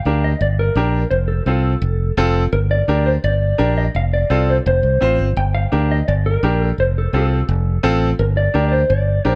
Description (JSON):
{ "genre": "latin", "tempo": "169 BPM", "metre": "4/4", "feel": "straight", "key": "G minor", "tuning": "A4 = 441 Hz", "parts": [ { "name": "mellow electric guitar", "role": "melody", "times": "0.0-9.4 s", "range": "A4 to G5", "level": "-23 LUFS", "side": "equal", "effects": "spring reverb" }, { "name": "bright upright piano", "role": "accompaniment", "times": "0.1-9.4 s", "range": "C4 to C5", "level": "-22 LUFS", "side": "equal", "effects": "none" }, { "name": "fingered electric bass", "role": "bass", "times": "0.1-9.4 s", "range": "F1 to D2", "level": "-20 LUFS", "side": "equal", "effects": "none" } ], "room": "light reverb", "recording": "none", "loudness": "-17 LUFS", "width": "mono", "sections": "0.0-9.4 A section", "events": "none", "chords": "0.0 Gm; 1.1 F; 2.5 Gm; 3.9 F; 5.4 Gm; 6.8 F; 8.2 Gm" }